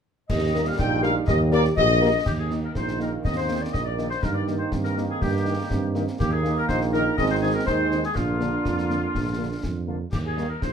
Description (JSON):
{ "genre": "military-style march for wind band", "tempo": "122 BPM", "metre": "2/4", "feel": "straight", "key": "Eb major", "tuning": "A4 = 441 Hz", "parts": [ { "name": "dark trumpet section", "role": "melody", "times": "0.3-10.5 s", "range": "Eb4 to G5", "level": "-30 LUFS", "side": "right 1 dB", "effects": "none" }, { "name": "mellow euphonium", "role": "second line", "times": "0.3-10.7 s", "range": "Bb3 to G4", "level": "-30 LUFS", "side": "right 4 dB", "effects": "none" }, { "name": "mellow woodwind section", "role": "second line", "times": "0.3-10.7 s", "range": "F4 to G5", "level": "-27 LUFS", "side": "left 3 dB", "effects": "none" }, { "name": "warm trombone section", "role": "sustained chords", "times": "0.3-10.5 s", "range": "Bb2 to Bb3", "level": "-32 LUFS", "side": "right 2 dB", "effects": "none" }, { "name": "mellow tuba", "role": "bass", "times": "0.3-10.7 s", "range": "Ab1 to G2", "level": "-26 LUFS", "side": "right 3 dB", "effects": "none" }, { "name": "concert snare drum, clash cymbals and concert bass drum", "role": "drums", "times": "0.3-10.7 s", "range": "none", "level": "-30 LUFS", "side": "left 1 dB", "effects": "none" }, { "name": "mellow French horn section", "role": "accompaniment", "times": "0.5-10.5 s", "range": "D3 to Bb4", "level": "-29 LUFS", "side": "left 4 dB", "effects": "none" } ], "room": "moderate large studio reverb, RT60 0.9 s", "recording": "none", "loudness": "-21 LUFS", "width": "side -7 dB against mid", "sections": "0.3-2.3 A section; 2.3-10.7 B section", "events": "none", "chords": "0.3 Eb; 2.3 Eb5; 4.2 Eb/G; 6.2 Eb; 7.2 Ab; 8.2 Bb; 10.1 Eb", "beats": "| 0.30 0.79 | 1.28 1.77 | 2.26 2.75 | 3.25 3.74 | 4.23 4.72 | 5.21 5.70 | 6.20 6.69 | 7.18 7.67 | 8.16 8.65 | 9.14 9.63 | 10.13 10.62" }